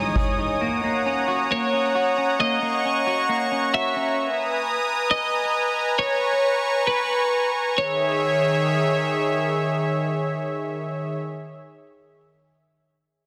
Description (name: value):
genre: dream pop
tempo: 67 BPM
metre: 4/4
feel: straight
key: C# dorian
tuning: A4 = 437 Hz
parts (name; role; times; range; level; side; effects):
- warm analog pad; sustained chords; 0.0-11.2 s; D#3 to D#6; -25 LUFS; equal; chorus
- semi-hollow electric guitar; arpeggios; 0.0-4.8 s; E3 to G#4; -28 LUFS; equal; lush chorus, delay
- electric guitar at the edge of break-up; melody; 1.5-11.2 s; B4 to E5; -26 LUFS; equal; analog chorus, delay
room: moderate lush hall reverb, RT60 3.0 s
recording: dense, heavily limited modern master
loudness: -23 LUFS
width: mono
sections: 0.0-7.8 A section; 7.8-11.4 B section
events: none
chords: 0.0 C#madd9; 0.6 D#m7; 4.2 G#madd9; 7.8 C#madd9